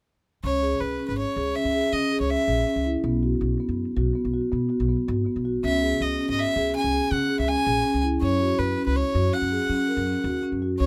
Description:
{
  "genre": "contemporary instrumental, chamber music in an uneven meter",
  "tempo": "162 BPM",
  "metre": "7/4",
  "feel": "straight",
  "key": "C# dorian",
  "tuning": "A4 = 439 Hz",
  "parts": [
    { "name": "clear violin", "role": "melody", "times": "0.4-10.9 s", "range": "B4 to G#5", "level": "-28 LUFS", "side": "equal", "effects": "none" },
    { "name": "marimba with soft mallets", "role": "arpeggios", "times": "0.4-10.9 s", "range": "B3 to A#4", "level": "-28 LUFS", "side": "equal", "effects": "none" },
    { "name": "upright bass", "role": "bass", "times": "0.4-10.9 s", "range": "G#1 to F#3", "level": "-30 LUFS", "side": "equal", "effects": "none" }
  ],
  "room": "little or no reverb",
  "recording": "close, detailed microphones",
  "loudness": "-24 LUFS",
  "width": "mono",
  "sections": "0.4-10.9 A section",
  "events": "none",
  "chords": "0.4 C#m; 3.0 B5; 5.6 C#m; 8.2 F#5"
}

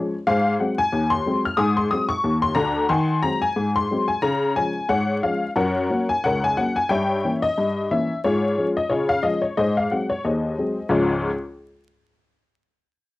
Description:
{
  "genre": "ragtime piano",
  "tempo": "90 BPM",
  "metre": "2/4",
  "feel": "swing 56% on 16ths",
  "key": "Db major",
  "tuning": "A4 = 441 Hz",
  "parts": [
    { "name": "honky-tonk upright piano", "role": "solo", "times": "0.0-11.3 s", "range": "Db2 to F6", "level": "-19 LUFS", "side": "left 2 dB", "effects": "none" }
  ],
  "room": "wet small room reverb, RT60 0.5 s",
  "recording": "home recording on cassette, vinyl crackle",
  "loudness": "-19 LUFS",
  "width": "side -17 dB against mid",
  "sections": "0.0-10.9 A section; 10.9-12.2 B section",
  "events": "none",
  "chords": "0.3 Ab7; 2.9 Ab7/Eb; 4.2 Db; 5.6 Gb; 6.9 Gdim7; 8.2 Db/Ab; 9.6 Ab7; 10.9 Db"
}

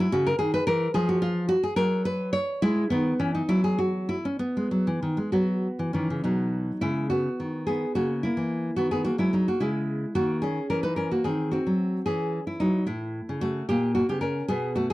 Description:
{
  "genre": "classical, baroque-style dance for nylon-string guitar",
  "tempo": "64-75 BPM (dotted quarters)",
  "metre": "6/8",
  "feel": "rubato",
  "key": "B major",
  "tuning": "A4 = 443 Hz",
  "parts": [
    { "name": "nylon-string guitar", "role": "solo", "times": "0.0-14.9 s", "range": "A2 to C#5", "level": "-24 LUFS", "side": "equal", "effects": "none" }
  ],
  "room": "light reverb",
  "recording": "dry, close 1970s-style studio recording",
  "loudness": "-24 LUFS",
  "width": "side -18 dB against mid",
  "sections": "0.0-6.3 A section; 6.3-14.9 B section",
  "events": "none",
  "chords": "0.1 C#m; 0.9 N.C.; 2.6 E; 3.5 N.C.; 4.4 B; 8.0 A#dim/C#; 8.8 B/D#; 9.6 C#m; 11.2 Cdim/Eb; 12.1 C#m/E; 12.9 A6; 13.7 A#m6"
}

